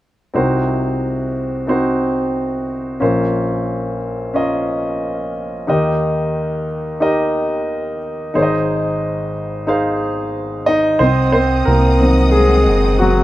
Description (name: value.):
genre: pop.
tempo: 90 BPM.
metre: 4/4.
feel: straight.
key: unclear.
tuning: A4 = 440 Hz.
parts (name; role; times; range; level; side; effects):
warm concert grand piano; accompaniment; 0.3-13.2 s; Ab1 to F5; -16 LUFS; equal; none.
warm studio string section; sustained chords; 11.0-13.2 s; C4 to Eb6; -23 LUFS; right 1 dB; none.
chorused synth bass; bass; 11.0-13.2 s; Gb1 to C2; -15 LUFS; equal; none.
room: light reverb.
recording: rough home demo mix.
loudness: -15 LUFS.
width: side -15 dB against mid.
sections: 0.3-11.0 A section; 11.0-13.2 B section.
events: grand piano solo 11.0-13.2.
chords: 0.3 Cdim; 3.0 Bbmadd9; 5.7 Eb; 8.3 Ab; 11.0 Cdim.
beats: | 0.34 1.01 1.68 2.35 | 3.01 3.68 4.34 5.01 | 5.68 6.34 7.01 7.68 | 8.35 9.01 9.68 10.35 | 11.01 11.68 12.35 13.01.